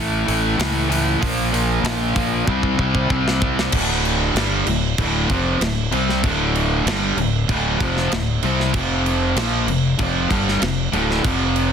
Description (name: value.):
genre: hard rock.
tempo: 96 BPM.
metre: 4/4.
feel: straight.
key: D minor.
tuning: A4 = 439 Hz.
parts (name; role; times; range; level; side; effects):
distorted electric guitar; riff; 0.0-11.7 s; D2 to C4; -23 LUFS; right 11 dB; distortion.
overdriven electric guitar; riff; 0.0-11.7 s; D2 to C4; -22 LUFS; left 10 dB; none.
fuzz fingered electric bass; bass; 0.0-11.7 s; D1 to C#2; -24 LUFS; equal; overdrive.
tight metal drum kit; drums; 0.3-11.7 s; crash cymbal, hi-hat, kick drum, snare drum; -24 LUFS; right 1 dB; soft clipping on kick, soft clipping on snare.
room: light reverb, small room ambience.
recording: dense, heavily limited modern master.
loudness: -17 LUFS.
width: side -7 dB against mid.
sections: 0.0-3.7 A section; 3.7-11.7 B section.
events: drum fill 2.5-3.7.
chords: 0.0 A; 1.2 Bb5; 2.5 C5; 3.7 Dm; 8.7 F5.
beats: 0.60 | 1.22 1.85 2.48 3.10 | 3.73 4.36 4.98 5.61 | 6.24 6.86 7.49 8.11 | 8.74 9.37 9.99 10.62 | 11.24.